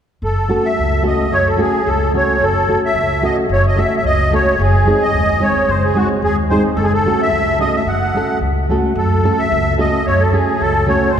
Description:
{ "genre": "balkan folk, Balkan wedding band", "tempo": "110 BPM", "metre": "2/4", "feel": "swing 53% on 16ths", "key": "F# dorian sharp4", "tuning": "A4 = 440 Hz", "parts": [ { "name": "musette accordion", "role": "melody", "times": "0.2-11.2 s", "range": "F#4 to F#5", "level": "-16 LUFS", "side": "equal", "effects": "none" }, { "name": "upright bass", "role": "bass", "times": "0.2-11.2 s", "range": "F#1 to F#2", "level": "-18 LUFS", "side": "equal", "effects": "none" }, { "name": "nylon-string guitar", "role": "accompaniment", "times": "0.5-11.1 s", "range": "G#3 to A4", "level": "-18 LUFS", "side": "right 1 dB", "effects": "none" } ], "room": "wet cathedral reverb, RT60 4.5 s", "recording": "recorded in a church or concert hall", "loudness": "-13 LUFS", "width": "side -8 dB against mid", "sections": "0.2-9.0 A section; 9.0-11.2 A section", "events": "none", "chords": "0.2 F#m; 4.6 G#/F#; 6.8 F#m", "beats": "| 0.25 0.79 | 1.34 1.88 | 2.42 2.97 | 3.51 4.06 | 4.60 5.15 | 5.70 6.24 | 6.79 7.34 | 7.88 8.43 | 8.98 9.53 | 10.07 10.62 | 11.17" }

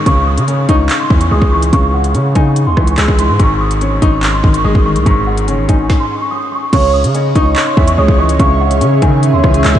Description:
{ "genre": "hip hop, drill", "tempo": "144 BPM", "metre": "4/4", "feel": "half-time", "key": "C# harmonic minor", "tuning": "A4 = 439 Hz", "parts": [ { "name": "small celesta", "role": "melody", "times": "0.0-9.8 s", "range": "F#5 to E6", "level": "-18 LUFS", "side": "right 1 dB", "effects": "ensemble chorus, low-pass filter, ping-pong delay" }, { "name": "clear concert grand piano", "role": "accompaniment", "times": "0.0-9.8 s", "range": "G#2 to D#4", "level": "-16 LUFS", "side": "left 2 dB", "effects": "low-pass filter" }, { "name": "distorted 808-style bass", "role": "bass", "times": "0.1-9.8 s", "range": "F#1 to C#3", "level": "-14 LUFS", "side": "equal", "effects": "distortion" }, { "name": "drill drum kit", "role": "drums", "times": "0.1-9.8 s", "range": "crash cymbal, handclaps, hi-hat, kick drum, rim click, snare drum", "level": "-15 LUFS", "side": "equal", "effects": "none" }, { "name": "warm velvety synth lead", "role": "second line", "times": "6.7-9.8 s", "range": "C#5 to E5", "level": "-18 LUFS", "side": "right 4 dB", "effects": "chorus, ping-pong delay" }, { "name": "granular cloud pad", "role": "sustained chords", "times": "7.8-9.8 s", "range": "C#3 to C#5", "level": "-18 LUFS", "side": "right 1 dB", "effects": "built-in reverb" } ], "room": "moderate huge ambient reverb, RT60 8.2 s", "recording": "dreamy mix soaked in reverb, vinyl crackle, nothing above 10.3 kHz", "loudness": "-10 LUFS", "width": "side -11 dB against mid", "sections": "0.0-6.7 A section; 6.7-9.8 B section", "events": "stop 5.9-6.7", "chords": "0.1 C#madd9; 3.4 G#sus4; 6.7 C#madd9", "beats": "| 0.06 0.48 0.90 1.31 | 1.73 2.15 2.56 2.98 | 3.40 3.81 4.23 4.65 | 5.06 5.48 5.90 6.31 | 6.73 7.15 7.56 7.98 | 8.40 8.81 9.23 9.65" }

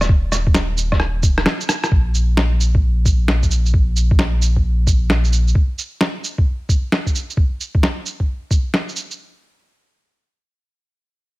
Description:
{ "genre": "future garage", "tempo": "132 BPM", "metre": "4/4", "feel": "swing 65% on 16ths", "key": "unclear", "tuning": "A4 = 439 Hz", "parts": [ { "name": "soft dub sub bass", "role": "bass", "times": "0.0-5.5 s", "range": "Eb1 to Bb1", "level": "-17 LUFS", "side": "equal", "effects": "sidechain pumping" }, { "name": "electronic rim click, shaker and snare drum", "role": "drums", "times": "0.0-9.2 s", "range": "none", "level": "-20 LUFS", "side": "equal", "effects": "overdrive" }, { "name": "electronic kick drum", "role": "drums", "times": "0.1-8.6 s", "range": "none", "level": "-16 LUFS", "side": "equal", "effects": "overdrive" } ], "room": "little or no reverb", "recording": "none", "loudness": "-15 LUFS", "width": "side -20 dB against mid", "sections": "0.0-1.9 A section; 1.9-9.2 B section; 9.2-11.4 C section", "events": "drum fill 1.0-1.9", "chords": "none", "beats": "| 0.10 0.55 1.00 1.46 | 1.91 2.37 2.82 3.28 | 3.73 4.19 4.64 5.09 | 5.55 6.00 6.46 6.91 | 7.37 7.82 8.28 8.73" }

